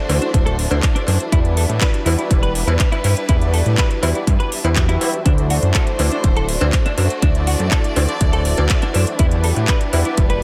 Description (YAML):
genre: nu-disco, nu disco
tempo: 122 BPM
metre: 4/4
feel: straight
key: E minor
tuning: A4 = 440 Hz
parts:
  - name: mellow synth brass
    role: accompaniment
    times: 0.0-10.4 s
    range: E4 to E5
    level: -28 LUFS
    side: equal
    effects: chorus, sidechain pumping, dub echo
  - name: warm studio violin section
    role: sustained chords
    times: 0.0-10.4 s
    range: G3 to D5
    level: -29 LUFS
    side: equal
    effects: sidechain pumping
  - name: clean electric guitar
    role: riff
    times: 0.1-10.4 s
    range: D4 to B4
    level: -29 LUFS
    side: equal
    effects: analog chorus, dub echo
  - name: fat analog bass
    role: bass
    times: 0.1-10.4 s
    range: D1 to A2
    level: -20 LUFS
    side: equal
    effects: sidechain pumping
  - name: house drum kit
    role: drums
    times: 0.1-10.4 s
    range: handclaps, hi-hat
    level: -27 LUFS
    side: equal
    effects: dub echo
  - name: cowbell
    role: percussion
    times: 0.1-10.0 s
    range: none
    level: -31 LUFS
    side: equal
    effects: dub echo
  - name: electronic kick drum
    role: drums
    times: 0.3-10.3 s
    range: none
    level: -19 LUFS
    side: equal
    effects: none
room: little or no reverb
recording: echo-heavy mix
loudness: -17 LUFS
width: mono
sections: 0.0-10.4 A section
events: filter sweep on analog polysynth 0.0-10.4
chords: 0.0 D7; 1.3 Em7; 5.3 D7; 9.2 Em7